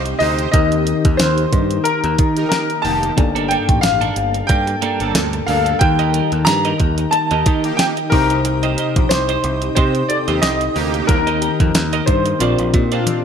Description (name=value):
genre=1980s-style pop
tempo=91 BPM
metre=4/4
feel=swing 55% on 16ths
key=unclear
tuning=A4 = 442 Hz
part: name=clear baby grand piano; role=melody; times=0.0-13.0 s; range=Bb4 to Bb5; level=-20 LUFS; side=left 1 dB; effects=analog chorus, ping-pong delay
part: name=tine electric piano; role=accompaniment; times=0.0-13.2 s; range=G2 to Eb5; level=-22 LUFS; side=left 6 dB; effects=medium tremolo
part: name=shimmering ambient pad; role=sustained chords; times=0.0-13.2 s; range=G3 to A4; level=-26 LUFS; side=right 1 dB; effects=chorus, built-in reverb
part: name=analog synth brass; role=stabs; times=0.0-13.2 s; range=Bb3 to C5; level=-25 LUFS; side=right 3 dB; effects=chorus
part: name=picked electric bass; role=bass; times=0.0-13.0 s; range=F1 to Eb3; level=-22 LUFS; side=right 1 dB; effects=none
part: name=clean 12-bit digital drum machine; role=drums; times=0.1-13.2 s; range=hi-hat, kick drum, snare drum, tambourine, toms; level=-18 LUFS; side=right 1 dB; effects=none
part: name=twelve-string electric guitar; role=riff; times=3.2-13.1 s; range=Bb3 to Eb5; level=-25 LUFS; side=right 8 dB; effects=lush chorus, ping-pong delay
room=moderate lush hall reverb, RT60 1.8 s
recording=bright 1980s-style digital production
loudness=-14 LUFS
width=side -7 dB against mid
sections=0.0-13.2 A section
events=drum fill 13.1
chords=0.0 Cm; 0.5 Eb; 3.2 Gmadd9; 5.8 Eb; 8.1 Cm; 11.1 Eb; 12.4 Bbadd9